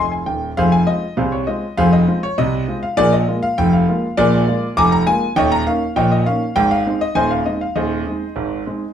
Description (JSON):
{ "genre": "ragtime piano", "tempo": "100 BPM", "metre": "2/4", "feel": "straight", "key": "Ab major", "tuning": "A4 = 440 Hz", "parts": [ { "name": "clear concert grand piano", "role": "solo", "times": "0.0-8.9 s", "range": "Eb1 to D6", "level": "-15 LUFS", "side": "equal", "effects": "none" } ], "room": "wet studio reverb, RT60 0.6 s", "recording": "heard from further back in the room", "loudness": "-15 LUFS", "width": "side -9 dB against mid", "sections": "0.6-8.9 A section", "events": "grand piano fill 0.0-0.6", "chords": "0.0 Ab; 0.6 Fm; 3.0 Bb7; 5.4 Eb5; 6.6 Ab/Eb" }